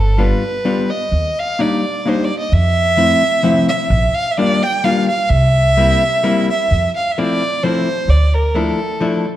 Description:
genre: musette.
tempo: 129 BPM.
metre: 3/4.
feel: straight.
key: F major.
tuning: A4 = 440 Hz.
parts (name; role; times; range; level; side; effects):
rich violin; melody; 0.0-9.3 s; A4 to G5; -17 LUFS; right 1 dB; none.
upright bass; bass; 0.0-8.7 s; G1 to F2; -14 LUFS; right 1 dB; none.
archtop guitar, miked and amplified; accompaniment; 0.2-9.3 s; F3 to F4; -18 LUFS; left 2 dB; none.
room: moderate recital hall reverb, RT60 1.5 s.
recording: dark, warm production.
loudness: -13 LUFS.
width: side -13 dB against mid.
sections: 0.0-9.4 A section.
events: none.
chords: 0.0 G7; 1.1 Ebmaj7; 2.5 Fmaj7; 3.9 Bb6; 5.3 C7; 6.7 Fmaj7; 8.1 Dmadd9.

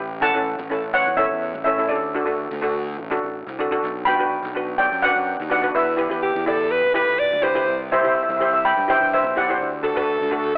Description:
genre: calypso.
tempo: 125 BPM.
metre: 4/4.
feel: straight.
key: unclear.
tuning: A4 = 440 Hz.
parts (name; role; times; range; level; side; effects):
fuzz fingered electric bass; bass; 0.0-10.6 s; A1 to G2; -33 LUFS; equal; overdrive.
steel pan; melody; 0.2-10.6 s; A4 to B5; -23 LUFS; equal; cassette tape, tape echo.
steel pan; accompaniment; 0.2-10.6 s; C#4 to D5; -27 LUFS; equal; cassette tape, plate reverb.
clear alto saxophone; second line; 6.2-10.6 s; G4 to D5; -23 LUFS; equal; cassette tape, plate reverb, tape echo.
room: moderate studio reverb, RT60 0.5 s.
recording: home recording on cassette, telephone sound.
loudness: -21 LUFS.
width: mono.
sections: 0.0-10.6 A section.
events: none.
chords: 0.0 A; 1.9 D; 3.8 Bm; 5.8 Em7; 7.7 Cmaj7; 9.6 D.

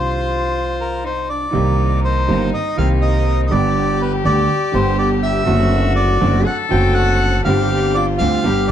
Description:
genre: tango.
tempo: 121 BPM.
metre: 4/4.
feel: rubato.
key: C minor.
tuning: A4 = 439 Hz.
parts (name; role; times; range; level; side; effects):
bandoneon; melody; 0.0-8.7 s; Bb4 to G5; -21 LUFS; equal; none.
warm cello; second line; 0.0-8.7 s; D4 to A4; -23 LUFS; left 6 dB; none.
clear concert grand piano; accompaniment; 0.0-8.7 s; G1 to G4; -20 LUFS; right 3 dB; none.
upright bass; bass; 0.0-8.7 s; F#1 to D2; -18 LUFS; equal; none.
muted studio string section; stabs; 1.5-8.7 s; B3 to Bb4; -29 LUFS; equal; none.
room: moderate club reverb, RT60 0.9 s.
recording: nothing above 10.6 kHz.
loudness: -14 LUFS.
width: side -10 dB against mid.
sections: 0.0-1.5 A section; 1.5-8.7 A section.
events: none.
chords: 0.0 Cmadd9; 1.5 Cm7; 3.5 G; 5.5 D7/F#; 7.5 Gsus4.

